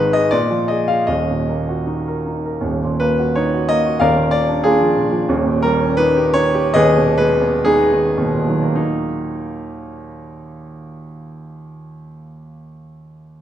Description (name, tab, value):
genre	classical, romantic character piece for solo piano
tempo	50-94 BPM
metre	2/4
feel	rubato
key	Eb minor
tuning	A4 = 438 Hz
part	warm grand piano	solo	0.0-13.4 s	Eb1 to F5	-16 LUFS	equal	none
room	wet recital hall reverb, RT60 1.7 s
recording	minimal, uncompressed stereo recording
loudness	-14 LUFS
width	side -10 dB against mid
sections	0.0-2.6 A section; 2.6-8.8 B section; 8.8-13.1 C section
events	slowing down 4.7-8.8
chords	0.3 Bb7; 1.1 Ebm; 4.0 Bb7/Eb; 5.3 Eb7; 6.8 Abm/Eb; 8.8 Ebm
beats	0.32 | 1.09 1.87 | 2.64 3.36 | 4.01 4.65 | 5.31 6.00 | 6.76 7.67 | 8.79 9.84 | 10.91 11.99